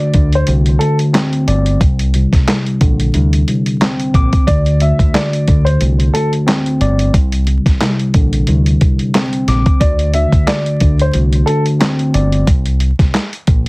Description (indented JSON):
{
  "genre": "hip hop, boom-bap hip-hop",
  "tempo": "90 BPM",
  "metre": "4/4",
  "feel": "swing 56% on 16ths",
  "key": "unclear",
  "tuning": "A4 = 440 Hz",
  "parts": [
    { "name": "dark upright piano", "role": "melody", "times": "0.0-11.6 s", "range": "A4 to E5", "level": "-19 LUFS", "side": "equal", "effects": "high-pass filter, low-pass filter, digital delay" },
    { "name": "tine electric piano", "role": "accompaniment", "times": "0.0-12.5 s", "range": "C2 to D6", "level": "-16 LUFS", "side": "equal", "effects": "high-pass filter, low-pass filter" },
    { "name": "deep dub fingered electric bass", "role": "bass", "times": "0.1-13.7 s", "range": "G1 to D2", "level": "-14 LUFS", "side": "equal", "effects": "none" },
    { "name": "dusty soul sampler-style drum kit", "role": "drums", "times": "0.1-13.7 s", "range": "handclaps, hi-hat, kick drum, snare drum", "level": "-14 LUFS", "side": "equal", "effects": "vintage 12-bit sampler grit" }
  ],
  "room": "light reverb",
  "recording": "heavily compressed radio sound, multiband compression, vinyl crackle",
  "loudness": "-11 LUFS",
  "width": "side -25 dB against mid",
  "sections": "0.0-13.7 A section",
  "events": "none",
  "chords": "0.0 Gsus4; 1.8 Csus2; 4.5 Gsus4 (rootless); 7.1 Csus2; 9.8 Gsus4 (rootless); 12.5 N.C.",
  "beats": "0.48 1.14 | 1.81 2.48 3.14 3.81 | 4.48 5.14 5.81 6.48 | 7.14 7.81 8.48 9.14 | 9.81 10.48 11.14 11.81 | 12.48 13.14"
}